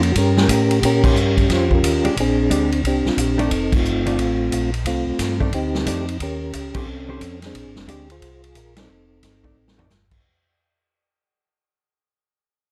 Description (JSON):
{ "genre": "soul jazz organ trio", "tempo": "178 BPM", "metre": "4/4", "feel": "swing 64% on 8ths", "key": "unclear", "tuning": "A4 = 440 Hz", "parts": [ { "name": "percussive tonewheel organ", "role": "melody", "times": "0.0-9.9 s", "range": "A3 to C5", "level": "-23 LUFS", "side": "equal", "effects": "slow rotary speaker, chorus vibrato" }, { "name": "mellow tonewheel organ", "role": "bass", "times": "0.0-10.2 s", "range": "F1 to Bb2", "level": "-25 LUFS", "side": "equal", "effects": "chorus vibrato, slow rotary speaker" }, { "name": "swinging big-band drum kit", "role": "drums", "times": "0.0-10.2 s", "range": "crash cymbal, hi-hat, kick drum, ride cymbal, snare drum, toms", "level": "-25 LUFS", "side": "equal", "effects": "none" }, { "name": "hollow-body jazz guitar", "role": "accompaniment", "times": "1.0-9.9 s", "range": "Eb3 to C5", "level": "-29 LUFS", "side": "equal", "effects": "none" } ], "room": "light reverb", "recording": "none", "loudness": "-19 LUFS", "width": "mono", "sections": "0.0-10.2 A section", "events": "fade-out 0.0-10.2; band accent 1.0, 3.7, 6.7, 8.7; drum fill 9.6-9.9", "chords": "0.0 Eb9; 2.2 Bb13; 3.5 F13; 6.2 Eb13; 7.5 Bb13; 8.9 F13", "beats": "0.15 0.48 | 0.82 1.16 1.49 1.83 | 2.16 2.50 2.84 3.17 | 3.51 3.84 4.18 4.52 | 4.85 5.19 5.53 5.86 | 6.20 6.54 6.87 7.21 | 7.54 7.88 8.22 8.55 | 8.89 9.23 9.56 9.90" }